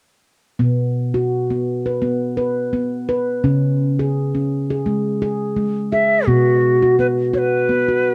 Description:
world meditative; 85 BPM; 4/4; swing 55% on 16ths; A4 = 440 Hz
handpan; arpeggios; 0.6-8.1 s; B2 to B4; -20 LUFS; equal
mellow Native American-style cedar flute; melody; 5.9-8.1 s; F#4 to E5; -18 LUFS; equal
wet studio ambience, RT60 0.5 s; cassette tape; -19 LUFS; mono
0.6-6.3 A section; 6.3-8.1 B section
0.6 B5; 3.4 C#5; 6.3 B5

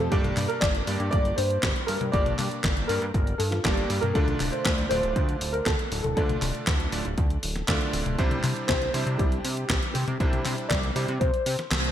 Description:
italo disco; 119 BPM; 4/4; straight; A4 = 439 Hz
dark grand piano; melody; 0.0-11.9 s; F4 to D5; -30 LUFS; left 1 dB; analog chorus, ping-pong delay
clear electric grand piano; stabs; 0.0-11.1 s; G2 to D5; -32 LUFS; right 2 dB; analog chorus
chorused synth bass; bass; 0.0-11.9 s; D1 to C3; -30 LUFS; equal
clean 12-bit digital drum machine; drums; 0.1-11.9 s; handclaps, hi-hat, snare drum, toms; -29 LUFS; left 1 dB; small room ambience, gated reverb
electronic kick drum; drums; 0.1-11.3 s; -27 LUFS; equal; small room ambience
moderate lush hall reverb, RT60 1.9 s, digital ambience; bright 1980s-style digital production; -23 LUFS; side -10 dB against mid
0.0-11.9 A section
kick drops out 11.7; band accent 11.7
0.1 Gm; 4.2 Dm; 8.2 Cadd9

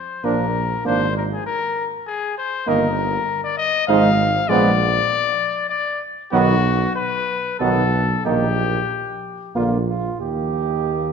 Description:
classical, brass quintet; 91-100 BPM; 3/4; rubato; Eb major; A4 = 442 Hz
mellow trumpet; melody; 0.0-11.1 s; F#4 to F5; -22 LUFS; left 6 dB
mellow flugelhorn; second line; 0.2-11.1 s; B3 to G4; -24 LUFS; right 8 dB
clear French horn; accompaniment; 0.2-11.1 s; F#3 to Bb3; -25 LUFS; left 2 dB
warm trombone; accompaniment; 0.2-11.1 s; D3 to F3; -28 LUFS; right 6 dB
mellow tuba; bass; 0.2-11.1 s; G1 to Eb2; -23 LUFS; right 3 dB
wet concert hall reverb, RT60 1.7 s; -18 LUFS; side -6 dB against mid
0.0-10.2 A section
0.2 Bb; 0.9 Bb7(no3)/Ab; 2.7 Eb/G; 3.9 Fm7/Ab; 4.5 Bb7; 6.3 B; 8.3 Eb/Bb; 9.6 Bb; 10.2 Eb

